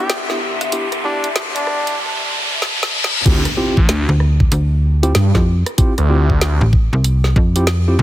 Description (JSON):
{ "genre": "glitch hop", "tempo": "95 BPM", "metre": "4/4", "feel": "swing 63% on 16ths", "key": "D dorian", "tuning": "A4 = 440 Hz", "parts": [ { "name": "mellow trumpet", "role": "melody", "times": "0.0-2.0 s", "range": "D4 to G4", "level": "-25 LUFS", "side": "equal", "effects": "dub echo" }, { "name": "warbly tape-like pad", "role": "sustained chords", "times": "0.0-3.2 s", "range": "C2 to E5", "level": "-36 LUFS", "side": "equal", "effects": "chorus, built-in reverb, vintage 12-bit sampler grit, sidechain pumping" }, { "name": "tine electric piano", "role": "stabs", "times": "0.0-8.0 s", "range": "B3 to G4", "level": "-23 LUFS", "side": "equal", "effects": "medium tremolo, sidechain pumping, dub echo" }, { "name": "riser, reverse cymbal and impact", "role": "sound effects", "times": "0.0-5.8 s", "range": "none", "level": "-22 LUFS", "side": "left 1 dB", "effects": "none" }, { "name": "airy breathy pad", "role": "texture", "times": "0.0-2.0 s", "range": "G4 to C6", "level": "-27 LUFS", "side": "left 4 dB", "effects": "chorus, sidechain pumping" }, { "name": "drum and bass drum kit", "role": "drums", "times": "0.1-7.8 s", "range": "crash cymbal, hi-hat, rim click, snare drum", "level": "-23 LUFS", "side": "equal", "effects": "none" }, { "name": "phased detuned saw bass", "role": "bass", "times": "3.3-6.6 s", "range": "A1 to G2", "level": "-15 LUFS", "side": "equal", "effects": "phaser, tube saturation" }, { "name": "electronic kick drum", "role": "drums", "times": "3.3-7.5 s", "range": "none", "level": "-14 LUFS", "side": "equal", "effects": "none" }, { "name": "slap-like FM bass", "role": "bass", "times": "4.1-8.0 s", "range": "A1 to F2", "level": "-14 LUFS", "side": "equal", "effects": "none" } ], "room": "light reverb, digital ambience", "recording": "heavily compressed radio sound, high-pass filter", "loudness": "-13 LUFS", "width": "side -14 dB against mid", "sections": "0.0-3.3 A section; 3.3-8.0 B section", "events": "build-up 0.0-3.3; riser 0.0-3.3; filter sweep 0.0-3.3; reverse cymbal 2.0-3.3; drum fill 2.6-3.3; drop 3.3-8.0; impact 3.3-5.8", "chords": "0.0 Cmaj7; 3.3 Dm11", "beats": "0.10 | 0.73 1.36 1.99 2.62 | 3.25 3.89 4.52 5.15 | 5.78 6.41 7.04 7.68" }